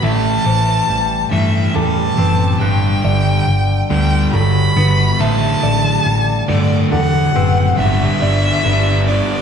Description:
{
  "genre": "post-rock",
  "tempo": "46 BPM (dotted quarters)",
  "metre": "6/8",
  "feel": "straight",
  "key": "G major",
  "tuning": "A4 = 441 Hz",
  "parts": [
    { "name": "rich violin", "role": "melody", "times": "0.0-9.4 s", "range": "D5 to B5", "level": "-19 LUFS", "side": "equal", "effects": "none" },
    { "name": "felt-muted upright piano", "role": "arpeggios", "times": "0.0-9.1 s", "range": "A4 to F#6", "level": "-25 LUFS", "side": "right 2 dB", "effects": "none" },
    { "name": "twangy electric guitar", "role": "arpeggios", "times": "0.0-7.8 s", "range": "G2 to C4", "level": "-24 LUFS", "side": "left 4 dB", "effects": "none" },
    { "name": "thick fuzz guitar", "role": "riff", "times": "0.0-9.4 s", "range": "G2 to D4", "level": "-17 LUFS", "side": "right 1 dB", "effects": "distortion" },
    { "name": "hollow-body short-scale picked electric bass", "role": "bass", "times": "0.0-9.2 s", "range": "F#1 to G2", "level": "-17 LUFS", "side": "equal", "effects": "none" }
  ],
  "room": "wet recital hall reverb, RT60 1.7 s",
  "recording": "recorded in a church or concert hall, nothing above 10.6 kHz",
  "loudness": "-12 LUFS",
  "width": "side -7 dB against mid",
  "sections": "0.0-7.8 A section; 7.8-9.4 B section",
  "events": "build-up 0.0-7.8",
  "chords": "0.0 Am7; 2.6 Gmaj7; 5.2 D7sus4/A; 7.8 Gmaj7"
}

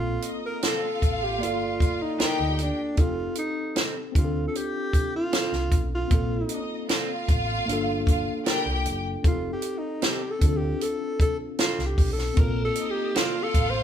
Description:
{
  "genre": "lush 1970s-style soul",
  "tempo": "77 BPM",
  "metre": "4/4",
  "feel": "straight",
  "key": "Bb major",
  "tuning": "A4 = 440 Hz",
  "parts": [
    { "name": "breathy alto saxophone", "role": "melody", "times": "0.0-13.8 s", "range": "D4 to C5", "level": "-29 LUFS", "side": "equal", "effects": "none" },
    { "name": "mellow tine electric piano", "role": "accompaniment", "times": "0.0-13.8 s", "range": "Bb3 to D5", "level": "-32 LUFS", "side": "left 2 dB", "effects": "medium stereo tremolo" },
    { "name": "hollow-body short-scale fingered electric bass", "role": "bass", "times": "0.0-13.8 s", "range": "F1 to D2", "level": "-30 LUFS", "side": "equal", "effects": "none" },
    { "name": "warm studio string section", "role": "second line", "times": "0.2-13.8 s", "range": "Eb4 to G5", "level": "-30 LUFS", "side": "equal", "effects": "none" },
    { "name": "compact cocktail drum kit", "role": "drums", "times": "0.2-13.7 s", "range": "hi-hat, kick drum, snare drum", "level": "-23 LUFS", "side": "equal", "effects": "none" },
    { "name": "electric guitar through a small old amp", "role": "riff", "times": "0.6-13.3 s", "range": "C4 to Bb4", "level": "-32 LUFS", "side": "right 3 dB", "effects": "none" },
    { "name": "tonewheel organ", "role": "sustained chords", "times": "12.4-13.8 s", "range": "Bb3 to A4", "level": "-39 LUFS", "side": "left 1 dB", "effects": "overdrive, chorus vibrato, slow rotary speaker" }
  ],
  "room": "light reverb",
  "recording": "band playing live in one room",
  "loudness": "-23 LUFS",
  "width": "side -9 dB against mid",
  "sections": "0.0-13.8 A section",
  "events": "alto saxophone solo 0.0-13.8",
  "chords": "0.0 Bbmaj9; 1.4 Gm7; 3.0 F7; 4.2 Dm7; 6.1 Bbmaj7sus2; 7.7 Gm7; 9.2 F7; 10.4 Dm7; 12.4 Bbmaj9"
}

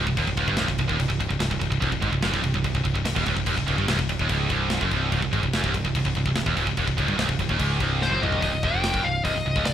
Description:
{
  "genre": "heavy metal",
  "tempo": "145 BPM",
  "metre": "4/4",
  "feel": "straight",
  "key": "C minor",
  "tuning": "A4 = 440 Hz",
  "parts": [
    { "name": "crunchy overdriven guitar", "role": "riff", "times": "0.0-8.4 s", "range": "C2 to Ab2", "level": "-31 LUFS", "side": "left 1 dB", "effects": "none" },
    { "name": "heavy high-gain guitar", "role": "riff", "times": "0.0-9.7 s", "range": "C2 to Ab2", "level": "-31 LUFS", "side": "left 12 dB", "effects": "distortion" },
    { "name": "heavy high-gain guitar", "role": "riff", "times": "0.0-9.7 s", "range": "C2 to Ab2", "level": "-26 LUFS", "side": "right 7 dB", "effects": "distortion" },
    { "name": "modern bright picked electric bass", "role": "bass", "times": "0.0-9.7 s", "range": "C1 to Ab1", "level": "-28 LUFS", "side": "left 1 dB", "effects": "none" },
    { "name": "tight metal drum kit", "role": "drums", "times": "0.1-9.7 s", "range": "crash cymbal, hi-hat, kick drum, snare drum, toms", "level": "-28 LUFS", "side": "left 1 dB", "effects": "none" },
    { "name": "high-gain lead guitar", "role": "melody", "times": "8.0-9.7 s", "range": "C5 to G5", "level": "-26 LUFS", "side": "left 4 dB", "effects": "distortion" }
  ],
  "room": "small room ambience",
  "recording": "rough home demo mix",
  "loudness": "-21 LUFS",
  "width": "side -10 dB against mid",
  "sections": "0.0-8.4 A section; 8.4-9.7 B section",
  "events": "drum fill 8.0-8.4",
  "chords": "0.0 Cm"
}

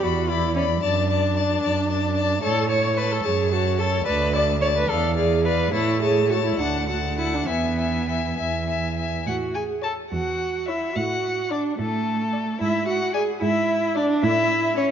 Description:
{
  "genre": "quick classical-period movement for string quartet",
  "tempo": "66-75 BPM (dotted quarters)",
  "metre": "6/8",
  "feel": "rubato",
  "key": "A major",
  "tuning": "A4 = 440 Hz",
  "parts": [
    { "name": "rich violin", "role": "melody", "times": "0.0-14.9 s", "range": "C#5 to B5", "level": "-31 LUFS", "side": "left 10 dB", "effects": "none" },
    { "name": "warm violin", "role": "second line", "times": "0.0-14.9 s", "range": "A4 to A5", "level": "-26 LUFS", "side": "left 4 dB", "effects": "none" },
    { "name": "warm viola", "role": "accompaniment", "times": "0.0-14.9 s", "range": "A3 to D5", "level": "-24 LUFS", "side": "right 2 dB", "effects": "none" },
    { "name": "rich cello", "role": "bass", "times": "0.0-14.9 s", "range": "D2 to A2", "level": "-26 LUFS", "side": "right 4 dB", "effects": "none" }
  ],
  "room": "moderate concert hall reverb, RT60 2.5 s",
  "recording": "nothing above 7.5 kHz",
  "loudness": "-20 LUFS",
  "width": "side -8 dB against mid",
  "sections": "0.0-9.3 A section; 9.3-14.9 B section",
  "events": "none",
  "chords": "0.0 E5; 0.8 D/F#; 2.4 A; 3.2 F#m; 4.1 Bm7/D; 4.9 E7b9; 5.7 A; 6.6 D; 7.5 E; 9.3 A; 11.0 D/A; 12.6 E7/G#; 14.2 A"
}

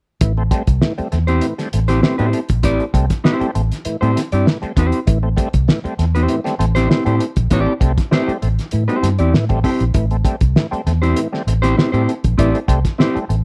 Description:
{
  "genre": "funk",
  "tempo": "99 BPM",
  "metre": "4/4",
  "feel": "straight",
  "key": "A minor",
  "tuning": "A4 = 435 Hz",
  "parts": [
    { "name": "overdriven tonewheel organ", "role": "stabs", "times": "0.2-13.4 s", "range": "A2 to C4", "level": "-27 LUFS", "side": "equal", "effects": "chorus vibrato, slow rotary speaker" },
    { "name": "vintage muted fingered electric bass", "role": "bass", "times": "0.2-13.4 s", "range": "A1 to A2", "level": "-19 LUFS", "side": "equal", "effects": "none" },
    { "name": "cloth-damped thuddy drum kit", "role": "drums", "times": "0.2-13.4 s", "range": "hi-hat, kick drum, snare drum", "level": "-20 LUFS", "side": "equal", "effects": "none" },
    { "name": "mellow electric guitar", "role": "accompaniment", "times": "1.3-13.2 s", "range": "C4 to D5", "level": "-21 LUFS", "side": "equal", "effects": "none" }
  ],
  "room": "small room reverb",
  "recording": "dry, close 1970s-style studio recording",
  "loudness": "-17 LUFS",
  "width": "mono",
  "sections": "0.2-13.4 A section",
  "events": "none",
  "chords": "0.2 Am7"
}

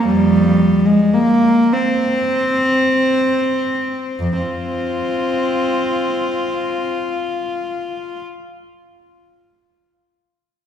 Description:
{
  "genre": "classical, free, expressive piece for unaccompanied cello",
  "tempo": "18-40 BPM (dotted quarters)",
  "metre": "6/8",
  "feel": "rubato",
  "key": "F minor",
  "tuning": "A4 = 440 Hz",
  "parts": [
    { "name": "clear cello", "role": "solo", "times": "0.0-8.2 s", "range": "F2 to F4", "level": "-15 LUFS", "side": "equal", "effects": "none" }
  ],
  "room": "wet concert hall reverb, RT60 2.5 s",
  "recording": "heard from further back in the room",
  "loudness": "-15 LUFS",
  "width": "side -8 dB against mid",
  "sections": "0.0-4.2 A section; 4.2-8.0 B section",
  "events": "slowing down 0.0-4.2",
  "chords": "none"
}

